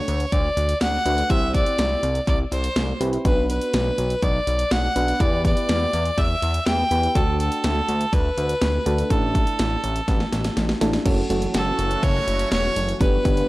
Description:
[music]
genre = synth-pop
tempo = 123 BPM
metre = 4/4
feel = straight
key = unclear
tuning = A4 = 440 Hz
[part]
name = clear fiddle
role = melody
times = 0.0-13.5 s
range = A4 to G5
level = -24 LUFS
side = equal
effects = tape echo
[part]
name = soft electric-piano-like synth keys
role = accompaniment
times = 0.0-13.5 s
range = A3 to C5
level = -26 LUFS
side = right 1 dB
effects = chorus
[part]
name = chorused synth bass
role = bass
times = 0.1-13.4 s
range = E1 to E2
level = -24 LUFS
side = equal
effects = tube saturation
[part]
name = house drum kit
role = drums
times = 0.1-13.5 s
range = crash cymbal, hi-hat, kick drum, snare drum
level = -24 LUFS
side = equal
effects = none
[part]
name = sweeping resonant pad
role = sustained chords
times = 11.1-13.5 s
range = D3 to F#4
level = -31 LUFS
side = equal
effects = chorus
[sound]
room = light reverb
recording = dry, gritty hardware recording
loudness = -19 LUFS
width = side -19 dB against mid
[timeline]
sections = 0.0-11.1 A section; 11.1-13.5 B section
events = drum fill 10.1-11.1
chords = 0.0 D; 1.3 C; 3.3 Bm; 5.2 Em7; 7.2 D; 9.1 Asus4; 11.1 F#m7

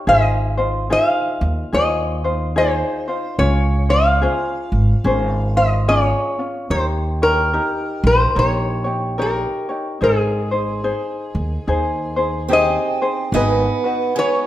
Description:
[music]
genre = Hawaiian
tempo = 72 BPM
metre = 4/4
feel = swing 61% on 8ths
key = Ab major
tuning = A4 = 441 Hz
[part]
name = metal-body resonator slide guitar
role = melody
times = 0.0-14.5 s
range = Ab4 to F5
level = -19 LUFS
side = left 1 dB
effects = none
[part]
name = ukulele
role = accompaniment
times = 0.0-14.5 s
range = Db4 to Db5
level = -22 LUFS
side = left 1 dB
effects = none
[part]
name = upright bass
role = bass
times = 0.1-13.7 s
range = Ab1 to Eb2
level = -20 LUFS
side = right 1 dB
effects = none
[part]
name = picked steel-string acoustic guitar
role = second line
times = 12.5-14.5 s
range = G#3 to C4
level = -22 LUFS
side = right 6 dB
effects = none
[sound]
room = wet recital hall reverb, RT60 1.4 s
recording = minimal, uncompressed stereo recording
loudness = -16 LUFS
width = side -13 dB against mid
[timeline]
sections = 0.0-13.3 A section; 13.3-14.5 B section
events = none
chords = 0.1 Ab6; 3.4 Dbmaj7; 6.7 Eb7; 10.0 Abmaj7; 13.3 G#m7

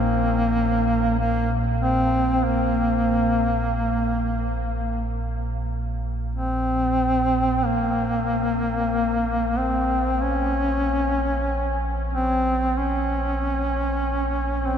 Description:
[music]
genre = dark ambient drone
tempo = free time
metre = none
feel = none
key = Bb minor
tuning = A4 = 438 Hz
[part]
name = warm duduk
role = melody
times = 0.0-14.8 s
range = Bb3 to Db4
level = -22 LUFS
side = equal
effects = ping-pong delay
[part]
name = deep rumbling drone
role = drone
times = 0.0-14.8 s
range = Bb1 to Bb2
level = -26 LUFS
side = equal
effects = built-in reverb
[sound]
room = wet huge ambient reverb, RT60 7.6 s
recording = none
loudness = -21 LUFS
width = side -8 dB against mid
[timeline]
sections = 0.0-7.6 A section; 7.6-14.8 B section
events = none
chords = none

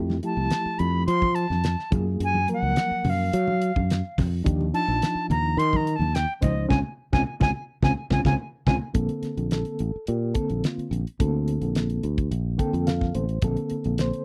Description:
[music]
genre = electric jazz fusion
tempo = 107 BPM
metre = 4/4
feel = straight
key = Bb major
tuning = A4 = 440 Hz
[part]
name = mellow reed electric piano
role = accompaniment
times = 0.0-14.2 s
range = D3 to G5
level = -31 LUFS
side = equal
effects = fast tremolo
[part]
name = fretless electric bass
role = bass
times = 0.0-14.1 s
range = A1 to Gb3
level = -28 LUFS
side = equal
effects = none
[part]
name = damped 70s drum kit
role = drums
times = 0.1-14.2 s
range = hi-hat, kick drum, snare drum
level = -28 LUFS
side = equal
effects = none
[part]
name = congas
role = percussion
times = 0.1-8.8 s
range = none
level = -31 LUFS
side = equal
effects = none
[part]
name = reedy silver concert flute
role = melody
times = 0.3-8.8 s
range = Eb5 to C6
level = -29 LUFS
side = equal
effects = slapback echo
[sound]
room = little or no reverb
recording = dry, close 1970s-style studio recording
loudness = -25 LUFS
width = mono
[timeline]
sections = 0.0-9.0 A section; 9.0-14.2 B section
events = band accent 6.7-9.0; drum fill 8.4-9.0; reed electric piano fill 12.3-13.4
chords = 0.0 Fmaj9; 1.9 Gbmaj9; 4.5 Ebmaj7sus2; 6.4 Dbmaj7; 9.0 Bbmaj9

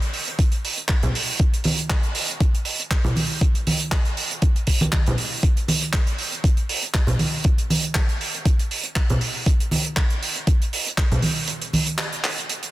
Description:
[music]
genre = nu-disco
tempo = 119 BPM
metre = 4/4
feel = swing 54% on 16ths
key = none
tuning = none
[part]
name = damped 70s drum kit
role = drums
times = 0.0-12.7 s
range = handclaps, hi-hat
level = -25 LUFS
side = right 2 dB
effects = soft clipping on snare
[part]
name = electronic kick drum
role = drums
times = 0.4-11.1 s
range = none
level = -19 LUFS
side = equal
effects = overdrive
[part]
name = congas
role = percussion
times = 1.0-11.8 s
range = none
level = -24 LUFS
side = right 1 dB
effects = none
[sound]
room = light reverb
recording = dense, heavily limited modern master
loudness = -19 LUFS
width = side -16 dB against mid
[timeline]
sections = 0.0-12.7 A section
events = break 11.5-12.7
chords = none

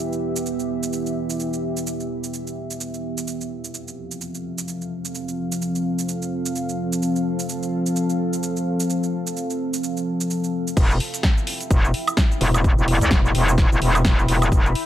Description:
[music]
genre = bass house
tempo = 128 BPM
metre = 4/4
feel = swing 58% on 16ths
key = E phrygian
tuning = A4 = 440 Hz
[part]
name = deep dark ambient pad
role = sustained chords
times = 0.0-14.9 s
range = E3 to B5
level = -24 LUFS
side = equal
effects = chorus, built-in reverb, sidechain pumping
[part]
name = house drum kit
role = drums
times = 0.1-14.9 s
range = crash cymbal, hi-hat, shaker, snare drum, woodblock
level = -27 LUFS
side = right 1 dB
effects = none
[part]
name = metallic wobble bass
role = bass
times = 10.8-14.7 s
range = E1 to D2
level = -18 LUFS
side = equal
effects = chorus, overdrive, sidechain pumping
[part]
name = electronic kick drum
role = drums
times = 10.8-14.6 s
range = none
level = -18 LUFS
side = equal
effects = none
[sound]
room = light reverb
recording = none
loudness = -20 LUFS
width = side -12 dB against mid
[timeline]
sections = 0.0-10.8 A section; 10.8-14.9 B section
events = drop 10.8-14.9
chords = 0.0 Em; 3.3 F; 10.8 Em

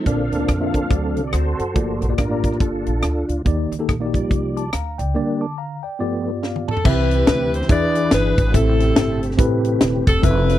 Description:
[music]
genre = uptempo gospel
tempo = 142 BPM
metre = 4/4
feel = swing 61% on 8ths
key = G minor, A minor from 6.9 s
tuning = A4 = 440 Hz
[part]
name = mellow tine electric piano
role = accompaniment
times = 0.0-10.6 s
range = G2 to D6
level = -23 LUFS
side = left 2 dB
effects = medium stereo tremolo
[part]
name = tonewheel organ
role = sustained chords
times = 0.0-10.6 s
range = C3 to F5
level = -24 LUFS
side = right 2 dB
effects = slow rotary speaker, chorus vibrato
[part]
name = upright bass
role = bass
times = 0.1-10.6 s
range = D#1 to F#2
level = -22 LUFS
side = equal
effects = none
[part]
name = tight funk drum kit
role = drums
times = 0.1-10.6 s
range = crash cymbal, hi-hat, kick drum, rim click, snare drum, toms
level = -19 LUFS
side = equal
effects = none
[part]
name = warm saxophone section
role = melody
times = 6.7-10.6 s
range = C4 to D5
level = -21 LUFS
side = left 2 dB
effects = none
[sound]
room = little or no reverb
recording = dry, close 1970s-style studio recording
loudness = -17 LUFS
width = side -13 dB against mid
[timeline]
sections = 0.1-6.9 A section; 6.9-10.6 B section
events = tonewheel organ solo 0.1-6.9; break 5.2-6.9; tine electric piano fill 6.2-6.9; drum fill 6.4-6.9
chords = 0.1 Bbmaj7; 0.9 D7; 1.8 Gm7; 3.5 Ebmaj7; 5.2 Gm/D; 6.0 G7; 6.9 Cmaj7; 7.7 E7; 8.5 Am7

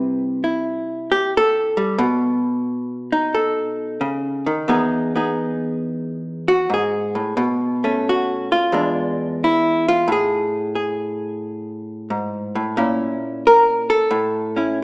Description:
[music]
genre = solo jazz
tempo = 89 BPM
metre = 4/4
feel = swing 67% on 8ths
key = E major from 4.7 s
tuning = A4 = 439 Hz
[part]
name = hollow-body jazz guitar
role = solo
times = 0.0-14.8 s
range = E2 to B4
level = -17 LUFS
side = equal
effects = none
[sound]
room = moderate recital hall reverb, RT60 1.6 s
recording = recorded in a church or concert hall, small speaker sound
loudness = -17 LUFS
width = side -28 dB against mid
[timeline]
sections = 0.0-4.7 A section; 4.7-14.8 A section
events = hollow-body jazz guitar solo 0.0-14.8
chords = 0.0 C6; 2.0 B9; 4.7 Emaj7; 7.4 Bsus2; 8.7 E7b9; 10.1 N.C.; 12.8 A#dim; 14.1 A

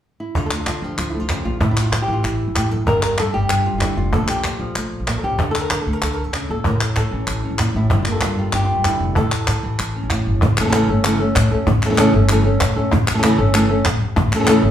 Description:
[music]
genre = flamenco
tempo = 191 BPM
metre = 4/4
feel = straight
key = A phrygian dominant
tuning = A4 = 440 Hz
[part]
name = flamenco guitar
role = melody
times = 0.2-14.7 s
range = G2 to Bb4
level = -19 LUFS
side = equal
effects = none
[part]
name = upright bass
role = bass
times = 0.3-14.7 s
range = F1 to D3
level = -21 LUFS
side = equal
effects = none
[part]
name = cajon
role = percussion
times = 0.4-14.6 s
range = none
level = -23 LUFS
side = right 1 dB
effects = none
[part]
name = palmas hand claps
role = percussion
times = 0.4-14.6 s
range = none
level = -24 LUFS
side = left 2 dB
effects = none
[sound]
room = wet large studio reverb, RT60 0.8 s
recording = band playing live in one room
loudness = -16 LUFS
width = side -10 dB against mid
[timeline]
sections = 0.3-10.4 A section; 10.4-14.7 B section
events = none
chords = 0.3 Dm; 1.6 A5; 2.9 G5; 4.1 Bbmaj7; 5.4 D5; 6.6 A; 7.9 Gm7; 9.2 A

